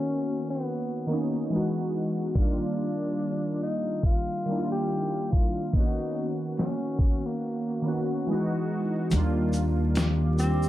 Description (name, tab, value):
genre	lo-fi hip hop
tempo	71 BPM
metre	4/4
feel	swing 57% on 16ths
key	unclear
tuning	A4 = 440 Hz
part	dark tenor saxophone	melody	0.0-10.7 s	A#3 to G4	-32 LUFS	left 2 dB	low-pass filter
part	warbly lo-fi synth keys	accompaniment	0.0-10.7 s	D#3 to F#4	-28 LUFS	equal	chorus, low-pass filter
part	dusty soul sampler-style drum kit	drums	2.4-10.6 s	hi-hat, kick drum, shaker, snare drum	-25 LUFS	equal	none
part	deep dark ambient pad	sustained chords	9.9-10.7 s	G4 to D6	-35 LUFS	right 3 dB	chorus, built-in reverb, low-pass filter
part	upright bass	bass	9.1-10.7 s	Eb2	-24 LUFS	equal	none
part	tube shaker	percussion	9.1-10.7 s	none	-46 LUFS	left 3 dB	none
room	moderate small room reverb, RT60 0.6 s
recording	dark, warm production, vinyl crackle, low-pass filter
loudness	-25 LUFS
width	side -14 dB against mid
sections	0.0-9.1 A section; 9.1-10.7 B section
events	filter sweep 0.0-9.1; silent gap 7.4-9.1; kick muted 9.1-10.7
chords	0.0 Bmaj9/D#; 1.5 Emaj9; 2.4 Ebmaj9; 5.7 Bmaj9/D#; 8.3 Emaj9; 9.1 Ebmaj9